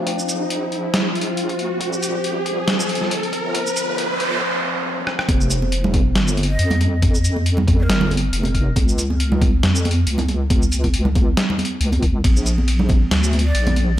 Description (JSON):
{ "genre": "deep dubstep", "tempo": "138 BPM", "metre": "4/4", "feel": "swing 55% on 16ths, half-time", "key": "unclear", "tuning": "A4 = 441 Hz", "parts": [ { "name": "overtone-sweeping drone", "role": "sustained chords", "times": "0.0-5.3 s", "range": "F3 to C4", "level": "-27 LUFS", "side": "left 1 dB", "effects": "chorus, built-in reverb" }, { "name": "deep soft wobble bass", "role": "bass", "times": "0.0-14.0 s", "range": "Eb1 to F2", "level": "-20 LUFS", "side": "equal", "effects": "chorus, high-pass filter" }, { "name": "riser and noise sweep", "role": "sound effects", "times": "0.0-5.3 s", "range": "none", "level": "-24 LUFS", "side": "equal", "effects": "none" }, { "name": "electronic kick drum", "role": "drums", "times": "0.1-13.0 s", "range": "none", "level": "-18 LUFS", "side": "equal", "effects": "high-pass filter on kick, high-pass filter on room" }, { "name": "trip hop sampler-style drum kit", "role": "drums", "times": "0.1-13.9 s", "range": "hi-hat, ride cymbal, rim click, shaker, snare drum", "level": "-23 LUFS", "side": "equal", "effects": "none" }, { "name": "congas", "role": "percussion", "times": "5.3-13.9 s", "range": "none", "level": "-23 LUFS", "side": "right 3 dB", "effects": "dub echo" }, { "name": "breathy bright ney", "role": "melody", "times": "6.5-8.1, 13.4-13.8 s", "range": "Bb4 to Eb5", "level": "-29 LUFS", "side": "equal", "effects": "dub echo" } ], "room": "light reverb, digital ambience", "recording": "none", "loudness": "-16 LUFS", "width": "side -12 dB against mid", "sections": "0.0-5.3 A section; 5.3-14.0 B section", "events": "build-up 0.0-5.3; riser 0.0-4.4; noise sweep 3.5-5.3; drum fill 5.1; drop 5.3-14.0", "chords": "0.0 Bb; 1.8 Ebadd9; 5.3 Fsus2; 8.8 Db; 12.2 Bb" }